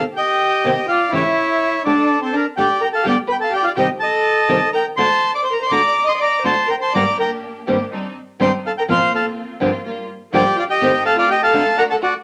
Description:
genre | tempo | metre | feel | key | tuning
tango | 124 BPM | 4/4 | rubato | G minor | A4 = 437 Hz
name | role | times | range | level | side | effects
bandoneon | melody | 0.0-12.1 s | A4 to Eb6 | -19 LUFS | equal | none
warm violin | second line | 0.0-12.1 s | C4 to Eb5 | -24 LUFS | equal | none
nylon-string guitar | accompaniment | 0.6-11.6 s | F2 to G4 | -23 LUFS | equal | none
clear symphonic string section | stabs | 6.9-12.0 s | G3 to G4 | -31 LUFS | equal | none
room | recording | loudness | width
moderate club reverb, RT60 0.8 s | none | -17 LUFS | mono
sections
0.0-12.2 A section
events
none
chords
0.2 Cm7; 1.1 A7/C#; 2.1 Dsus4; 3.1 G5/D; 4.0 Cm; 5.0 D; 6.9 Gm; 7.9 Cmadd9/G; 8.9 Fsus4; 9.9 Gm7; 10.8 Adim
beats
0.16 0.65 | 1.13 1.62 2.10 2.58 | 3.06 3.54 4.01 4.50 | 4.98 5.47 5.95 6.45 | 6.94 7.43 7.91 8.40 | 8.89 9.37 9.85 10.34 | 10.81 11.29 11.78

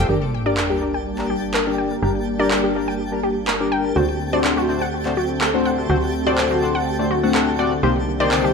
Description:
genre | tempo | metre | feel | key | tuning
progressive house | 124 BPM | 4/4 | straight | G minor | A4 = 440 Hz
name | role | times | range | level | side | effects
supersaw pad | sustained chords | 0.0-8.5 s | C3 to D4 | -26 LUFS | equal | low-pass filter
wide unison pluck | arpeggios | 0.0-8.5 s | F#4 to G5 | -24 LUFS | equal | ping-pong delay
chorused polysynth | stabs | 0.0-8.5 s | A3 to F#5 | -22 LUFS | left 4 dB | ping-pong delay
tight sequencer bass | bass | 0.0-8.5 s | G1 to D2 | -28 LUFS | equal | none
twinkling granular texture | texture | 0.0-8.5 s | G4 to A5 | -30 LUFS | right 1 dB | built-in reverb
sub drop | sound effects | 0.1-2.0 s | none | -28 LUFS | right 1 dB | none
electronic handclaps | drums | 0.6-8.4 s | none | -24 LUFS | right 1 dB | overdrive, small room ambience
room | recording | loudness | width
moderate digital room reverb, RT60 1.0 s | dark, warm production | -18 LUFS | side -5 dB against mid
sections
0.1-8.5 A section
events
impact 0.1-2.0; filter sweep on synth pluck 0.1-8.5; filter sweep on analog polysynth 0.1-8.5; filter sweep on supersaw synth 0.1-8.5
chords
0.1 Gm; 4.0 D7; 7.8 Cm7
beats
| 0.09 0.57 1.06 1.54 | 2.02 2.51 2.99 3.48 | 3.96 4.44 4.93 5.41 | 5.90 6.38 6.86 7.35 | 7.83 8.31

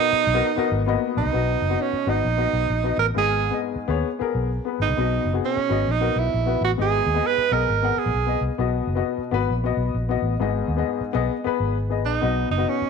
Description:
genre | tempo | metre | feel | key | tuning
uptempo 1960s-style soul | 132 BPM | 4/4 | swing 61% on 8ths | B major | A4 = 439 Hz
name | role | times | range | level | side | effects
breathy tenor saxophone | melody | 0.0-8.4, 12.1-12.9 s | C#4 to B4 | -23 LUFS | right 10 dB | none
warm upright piano | accompaniment | 0.0-12.9 s | G#2 to B5 | -25 LUFS | left 11 dB | none
vintage muted fingered electric bass | bass | 0.1-12.8 s | F#1 to D#2 | -25 LUFS | equal | none
room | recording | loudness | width
moderate echo chamber reverb, RT60 2.0 s, small room reverb | 1960s-style stereo with parts hard left and right | -20 LUFS | side -5 dB against mid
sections
0.0-1.3 A section; 1.3-12.9 B section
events
upright piano fill 0.7-1.3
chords
0.0 Bmaj7; 1.3 B; 3.2 G#m; 5.0 B; 6.8 G#m; 8.6 B; 10.4 G#m; 12.2 B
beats
0.44 0.89 | 1.34 1.79 2.25 2.70 | 3.15 3.61 4.06 4.52 | 4.97 5.42 5.88 6.33 | 6.78 7.24 7.69 8.14 | 8.60 9.05 9.51 9.96 | 10.41 10.87 11.32 11.77 | 12.22 12.68

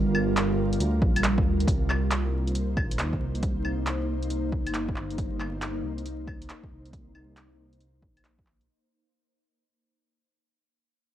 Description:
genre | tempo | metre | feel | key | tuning
future garage | 137 BPM | 4/4 | swing 65% on 16ths | C minor | A4 = 441 Hz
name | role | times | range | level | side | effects
ethereal airy pad | sustained chords | 0.0-8.6 s | G3 to C5 | -30 LUFS | right 1 dB | ensemble chorus, built-in reverb, sidechain pumping
dark detuned saw bass | bass | 0.0-8.7 s | G1 to Eb2 | -29 LUFS | equal | sidechain pumping
deep house drum kit | drums | 0.1-8.7 s | claves, handclaps, hi-hat | -31 LUFS | equal | overdrive
electronic kick drum | drums | 1.0-8.4 s | none | -28 LUFS | equal | overdrive
room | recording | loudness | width
light reverb, digital ambience | dry, gritty hardware recording, vinyl crackle | -24 LUFS | side -12 dB against mid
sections
0.0-1.7 A section; 1.7-8.7 B section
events
fade-out 1.7-8.7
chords
0.0 Gm7; 1.7 Cm7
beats
0.36 0.80 1.24 | 1.67 2.11 2.55 2.99 | 3.43 3.86 4.30 4.74 | 5.18 5.62 6.05 6.49 | 6.93 7.37 7.81 8.24

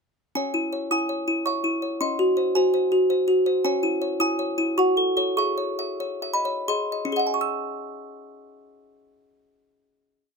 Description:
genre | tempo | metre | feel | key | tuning
classical, lullaby for music box | 81-110 BPM | 3/4 | straight | C# minor | A4 = 441 Hz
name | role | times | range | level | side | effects
music box | solo | 0.4-10.4 s | C#4 to E6 | -21 LUFS | equal | none
room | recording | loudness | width
light reverb | close, detailed microphones | -21 LUFS | side -4 dB against mid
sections
0.4-7.4 A section; 7.4-10.4 final chord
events
slowing down 2.8-7.4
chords
0.4 C#m; 2.0 G#7/C#; 3.6 C#m; 4.8 F#m; 5.4 C#m/G#; 6.7 G#7; 7.4 C#m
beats
| 0.36 0.91 1.46 | 2.01 2.56 3.10 | 3.65 4.21 4.78 | 5.38 6.01 6.69 | 7.42 8.16 8.90 | 9.64

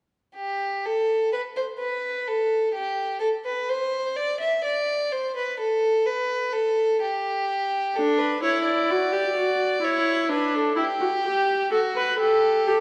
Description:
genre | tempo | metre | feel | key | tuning
classical, baroque-style fugue for string quartet | 63 BPM | 4/4 | straight | unclear | A4 = 441 Hz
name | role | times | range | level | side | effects
rich violin | second line | 0.4-12.8 s | F#4 to E5 | -26 LUFS | equal | none
warm viola | accompaniment | 8.0-12.8 s | D4 to B4 | -25 LUFS | equal | none
room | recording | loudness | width
wet recital hall reverb, RT60 1.7 s | heard from further back in the room | -24 LUFS | mono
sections
0.4-12.8 A section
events
none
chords
0.4 N.C.; 8.0 D; 11.7 A5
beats
| 0.38 1.33 2.27 3.22 | 4.17 5.12 6.07 7.02 | 7.96 8.90 9.83 10.78 | 11.72 12.67

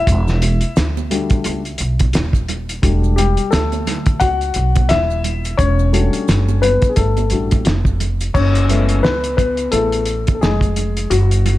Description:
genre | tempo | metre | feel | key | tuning
hip hop, jazz-hop | 87 BPM | 4/4 | swing 59% on 16ths | unclear | A4 = 444 Hz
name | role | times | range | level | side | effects
dark concert grand piano | accompaniment | 0.0-11.6 s | F#3 to F#5 | -19 LUFS | left 4 dB | none
upright bass | bass | 0.0-11.6 s | D#1 to D2 | -17 LUFS | right 1 dB | none
cloth-damped thuddy drum kit | drums | 0.1-11.6 s | crash cymbal, hi-hat, kick drum, snare drum | -18 LUFS | equal | none
maracas and congas | percussion | 0.1-11.6 s | none | -30 LUFS | right 16 dB | none
room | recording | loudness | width
small room ambience | none | -14 LUFS | side -16 dB against mid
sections
0.0-8.3 A section; 8.3-11.6 B section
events
grand piano solo 0.0-8.3, 8.3-11.6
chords
0.0 Em11; 8.3 F#m11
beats
| 0.07 0.76 1.45 2.14 | 2.83 3.52 4.21 4.90 | 5.59 6.28 6.97 7.66 | 8.35 9.04 9.73 10.42 | 11.11

